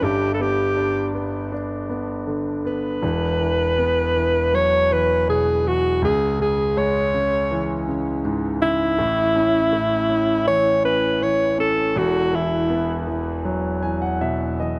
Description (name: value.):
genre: pop.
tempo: 80 BPM.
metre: 4/4.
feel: straight.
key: unclear.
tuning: A4 = 440 Hz.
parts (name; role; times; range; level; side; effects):
breathy alto saxophone; melody; 0.0-13.1 s; E4 to C#5; -22 LUFS; equal; none.
warm concert grand piano; accompaniment; 0.0-14.8 s; E1 to G#5; -25 LUFS; equal; none.
room: moderate lush hall reverb, RT60 2.4 s.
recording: dark, warm production.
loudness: -21 LUFS.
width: mono.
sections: 0.0-14.8 A section.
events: grand piano fill 13.5-14.8.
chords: 0.0 G; 3.0 Esus2; 6.0 C#m; 9.0 A; 12.0 Esus2.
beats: | 0.02 0.77 1.52 2.27 | 3.03 3.78 4.53 5.28 | 6.02 6.77 7.51 8.25 | 8.99 9.73 10.47 11.21 | 11.96 12.70 13.45 14.22.